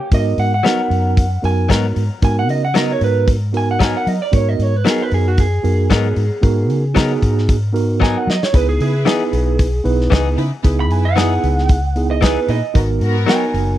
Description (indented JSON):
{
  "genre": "straight-eighth soul blues",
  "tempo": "114 BPM",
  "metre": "4/4",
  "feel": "straight",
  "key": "G# minor",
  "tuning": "A4 = 440 Hz",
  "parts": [
    { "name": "mellow tine electric piano", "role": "accompaniment", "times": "0.0-13.8 s", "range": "B3 to B4", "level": "-21 LUFS", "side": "right 4 dB", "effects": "medium stereo tremolo" },
    { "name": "electric guitar through a small old amp", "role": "second line", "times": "0.1-13.8 s", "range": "F#4 to B5", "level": "-21 LUFS", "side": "right 3 dB", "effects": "none" },
    { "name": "vintage muted fingered electric bass", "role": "bass", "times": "0.1-13.8 s", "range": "F#1 to F#3", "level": "-17 LUFS", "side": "equal", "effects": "none" },
    { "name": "warm soul drum kit", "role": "drums", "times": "0.1-13.7 s", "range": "hi-hat, kick drum, snare drum", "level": "-15 LUFS", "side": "equal", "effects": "none" },
    { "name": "direct-recorded clean electric guitar", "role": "stabs", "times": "0.6-13.4 s", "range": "E3 to A#4", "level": "-24 LUFS", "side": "left 9 dB", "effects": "spring reverb" },
    { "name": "dark studio string section", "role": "sustained chords", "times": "8.5-13.5 s", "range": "B3 to B4", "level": "-27 LUFS", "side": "left 2 dB", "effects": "none" }
  ],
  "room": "little or no reverb",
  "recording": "dry, close 1970s-style studio recording",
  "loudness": "-14 LUFS",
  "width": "side -13 dB against mid",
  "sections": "0.1-13.8 A section",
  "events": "clean electric guitar solo 0.1-13.8; drum fill 8.0-8.5",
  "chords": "0.1 G#m9; 8.5 C#m9; 12.8 G#m9",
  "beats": "| 0.11 0.64 1.17 1.69 | 2.22 2.75 3.27 3.80 | 4.33 4.85 5.38 5.91 | 6.43 6.96 7.48 8.01 | 8.54 9.06 9.59 10.12 | 10.64 11.17 11.70 12.22 | 12.75 13.28"
}